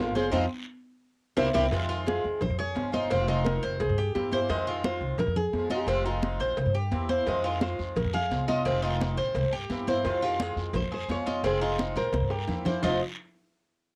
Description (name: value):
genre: latin, Cuban son and guajira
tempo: 173 BPM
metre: 4/4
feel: straight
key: F minor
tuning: A4 = 445 Hz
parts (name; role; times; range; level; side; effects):
- nylon-string guitar; melody; 0.0-13.0 s; F4 to F5; -34 LUFS; equal; cassette tape
- picked swing-style acoustic guitar; accompaniment; 0.0-13.0 s; F2 to F4; -37 LUFS; equal; cassette tape
- Cuban tres; arpeggios; 0.0-13.0 s; C4 to Eb5; -33 LUFS; equal; cassette tape
- upright bass; bass; 0.0-13.0 s; F1 to G2; -34 LUFS; equal; none
- congas; percussion; 0.2-12.9 s; none; -35 LUFS; equal; none
- guiro; percussion; 0.2-1.6, 7.3-12.9 s; none; -47 LUFS; equal; none
- bongos and cowbell; percussion; 0.3-12.9 s; none; -43 LUFS; equal; none
room: moderate booth ambience, RT60 0.2 s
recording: home recording on cassette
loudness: -28 LUFS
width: mono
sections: 0.0-1.7 A section; 1.7-12.8 B section; 12.8-14.0 C section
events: nylon-string guitar solo 0.0-1.7; band accent 0.3-1.7; drum fill 1.0-1.7, 12.1-12.8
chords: 0.3 Fm7; 1.0 C7; 1.7 Fm7; 2.4 Bbm7 (rootless); 3.1 Fm7; 3.8 C7b13; 4.5 Fm7; 5.2 Bbm7; 5.9 Fm9; 6.6 C7; 7.3 Fm7; 8.0 Bbm9; 8.7 Fm7; 9.4 C7; 10.0 Fm7; 10.7 Bbm7 (rootless); 11.4 Fm7; 12.1 C7; 12.8 F7(no3)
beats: | 0.34 0.68 1.03 1.38 | 1.73 2.07 2.42 2.77 | 3.11 3.46 3.81 4.15 | 4.50 4.84 5.19 5.54 | 5.88 6.23 6.58 6.92 | 7.27 7.62 7.97 8.31 | 8.66 9.01 9.35 9.70 | 10.05 10.40 10.74 11.09 | 11.44 11.79 12.13 12.48 | 12.83